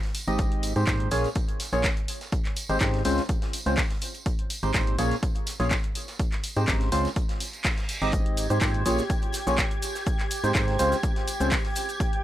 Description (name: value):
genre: piano house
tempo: 124 BPM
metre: 4/4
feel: swing 53% on 16ths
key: Ab major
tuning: A4 = 441 Hz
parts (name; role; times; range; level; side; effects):
- modern studio drum kit; drums; 0.0-12.1 s; hi-hat, snare drum; -44 LUFS; right 2 dB; none
- punchy analog drum machine; drums; 0.0-12.2 s; cabasa, handclaps, hi-hat; -31 LUFS; equal; none
- tambourine; percussion; 0.1-12.1 s; none; -41 LUFS; right 3 dB; none
- percussive organ stab; riff; 0.3-11.6 s; Ab2 to Eb5; -28 LUFS; equal; lush chorus, sidechain pumping, analog delay
- organ-like FM bass; bass; 0.3-11.5 s; Ab1 to Ab2; -28 LUFS; equal; sidechain pumping
- electronic kick drum; drums; 0.4-12.1 s; none; -27 LUFS; equal; none
- reverse cymbal; sound effects; 7.5-8.1 s; none; -36 LUFS; right 2 dB; none
- analog string pad; sustained chords; 8.1-12.2 s; G4 to Ab6; -32 LUFS; right 1 dB; ensemble chorus, sidechain pumping
room: little or no reverb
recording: dry, gritty hardware recording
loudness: -23 LUFS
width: side -13 dB against mid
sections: 0.0-12.2 A section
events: reverse cymbal 7.5-8.1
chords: 0.4 Abmaj7; 1.1 Bbm7; 2.1 Abmaj7; 3.0 Dbmaj7; 4.3 Abmaj7; 5.0 Bbm7; 6.0 Abmaj7; 6.9 Dbmaj7; 8.1 Abmaj7; 8.9 Bbm7; 9.8 Abmaj7; 10.8 Dbmaj7